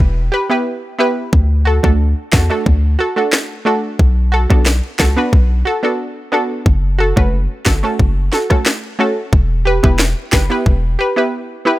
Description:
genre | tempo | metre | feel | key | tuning
dancehall | 90 BPM | 4/4 | straight | B minor | A4 = 439 Hz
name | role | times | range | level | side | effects
warm 808-style bass | bass | 0.0-11.0 s | E1 to E2 | -14 LUFS | equal | none
island pop drum kit | drums | 0.0-10.8 s | handclaps, kick drum, rim click, snare drum | -14 LUFS | equal | none
analog pluck | accompaniment | 0.3-11.8 s | A3 to B4 | -17 LUFS | right 1 dB | chorus
room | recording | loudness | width
little or no reverb | none | -12 LUFS | side -16 dB against mid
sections
0.0-11.8 A section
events
none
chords
0.0 Em; 1.3 D; 4.0 Bm7; 6.7 F#m; 9.3 Em

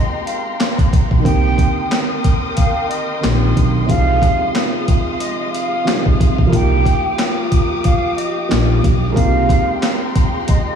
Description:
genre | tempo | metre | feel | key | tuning
hip hop, boom-bap hip-hop | 91 BPM | 4/4 | swing 57% on 16ths | C minor | A4 = 437 Hz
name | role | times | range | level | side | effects
breathy mellow silver concert flute | melody | 0.0-10.8 s | Eb5 to G5 | -22 LUFS | equal | high-pass filter, low-pass filter, diffuse ambient delay
dark upright piano | accompaniment | 0.0-10.8 s | C3 to G4 | -22 LUFS | right 3 dB | high-pass filter, low-pass filter
warm studio string section | sustained chords | 0.0-10.8 s | Ab3 to Eb6 | -25 LUFS | left 3 dB | high-pass filter, low-pass filter
boom bap sampler-style drum kit | drums | 0.3-10.7 s | handclaps, hi-hat, kick drum, snare drum | -17 LUFS | equal | none
upright bass | bass | 1.1-9.5 s | Bb1 to C2 | -16 LUFS | equal | none
room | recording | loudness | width
light reverb, small room ambience | studio reverb | -13 LUFS | side -7 dB against mid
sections
0.0-10.8 A section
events
none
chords
0.0 Abmaj9; 1.3 Cm7; 3.9 Fm7/C; 6.5 Ebmaj9/C; 9.2 Abmaj9/C

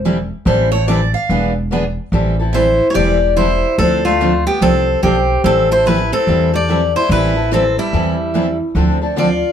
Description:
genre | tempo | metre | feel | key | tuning
acoustic string swing (jazz manouche) | 145 BPM | 4/4 | swing 63% on 8ths | A minor | A4 = 441 Hz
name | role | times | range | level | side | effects
picked steel-string acoustic guitar | second line | 0.0-9.5 s | G3 to F5 | -18 LUFS | equal | none
upright bass | bass | 0.0-9.4 s | E1 to E2 | -18 LUFS | equal | none
picked steel-string acoustic guitar | accompaniment | 0.1-9.3 s | D3 to A4 | -22 LUFS | left 2 dB | none
picked steel-string acoustic guitar | accompaniment | 0.1-9.3 s | D3 to B4 | -21 LUFS | right 3 dB | none
picked steel-string acoustic guitar | melody | 2.5-9.5 s | E4 to D5 | -17 LUFS | left 1 dB | none
room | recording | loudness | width
moderate studio reverb, RT60 0.6 s | heard from further back in the room | -12 LUFS | side -8 dB against mid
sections
0.0-2.1 A section; 2.1-9.5 B section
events
steel-string acoustic guitar solo 0.0-2.1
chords
0.0 Am7; 1.3 E7; 2.1 Am7; 3.8 Dm7; 5.4 Am7; 8.8 Dm7

